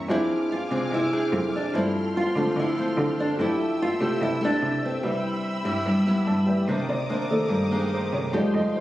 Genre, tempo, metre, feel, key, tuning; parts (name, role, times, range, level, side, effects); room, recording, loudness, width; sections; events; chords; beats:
bossa nova; 146 BPM; 4/4; straight; C major; A4 = 440 Hz
dark grand piano; accompaniment; 0.0-8.8 s; Eb3 to A5; -31 LUFS; right 1 dB
nylon-string guitar; accompaniment; 0.0-8.8 s; G2 to Ab4; -27 LUFS; left 1 dB
warm symphonic violin section; sustained chords; 0.0-8.8 s; A4 to F6; -34 LUFS; equal
warm cello; bass; 0.0-8.8 s; C2 to D3; -29 LUFS; right 1 dB
nylon-string guitar; melody; 0.1-6.2 s; C4 to F4; -26 LUFS; equal
light reverb; recorded on a phone in the room, studio reverb, compression; -22 LUFS; side -15 dB against mid
0.0-6.7 A section; 6.7-8.8 B section
grand piano fill 6.1-6.7; grand piano solo 6.7-8.8
0.1 Fm6; 1.7 G9sus4; 3.4 Fmaj9; 5.0 Cmaj7; 6.7 Cm9
| 0.10 0.51 0.92 1.33 | 1.74 2.15 2.56 2.98 | 3.39 3.80 4.21 4.62 | 5.04 5.45 5.86 6.27 | 6.68 7.10 7.51 7.92 | 8.33 8.74